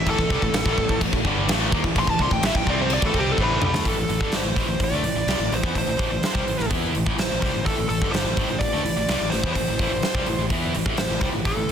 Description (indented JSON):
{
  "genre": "hard rock",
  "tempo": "126 BPM",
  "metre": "4/4",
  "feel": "straight",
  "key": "A minor",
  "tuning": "A4 = 440 Hz",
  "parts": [
    { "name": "nasal lead guitar with a parked wah", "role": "melody", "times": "0.0-11.7 s", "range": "E4 to C6", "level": "-26 LUFS", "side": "equal", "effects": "overdrive" },
    { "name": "distorted electric guitar", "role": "riff", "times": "0.0-11.7 s", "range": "G2 to E4", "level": "-30 LUFS", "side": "left 11 dB", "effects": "overdrive" },
    { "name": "scooped high-gain guitar", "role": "riff", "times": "0.0-11.7 s", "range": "G2 to E4", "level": "-33 LUFS", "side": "equal", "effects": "distortion" },
    { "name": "tight distorted guitar", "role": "riff", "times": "0.0-11.7 s", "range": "G2 to E4", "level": "-30 LUFS", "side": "right 10 dB", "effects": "distortion" },
    { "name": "growling fingered electric bass", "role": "bass", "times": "0.0-11.7 s", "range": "G1 to E2", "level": "-29 LUFS", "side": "equal", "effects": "overdrive" },
    { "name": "big rock drum kit", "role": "drums", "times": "0.1-11.7 s", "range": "crash cymbal, hi-hat, kick drum, snare drum, toms", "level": "-24 LUFS", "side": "equal", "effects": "soft clipping on snare" }
  ],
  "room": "light reverb",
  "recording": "dense, heavily limited modern master",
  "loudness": "-20 LUFS",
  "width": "side -8 dB against mid",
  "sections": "0.0-3.9 A section; 3.9-11.7 B section",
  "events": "lead electric guitar solo 0.0-3.9; drum fill 3.4-3.9",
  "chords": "0.0 Am"
}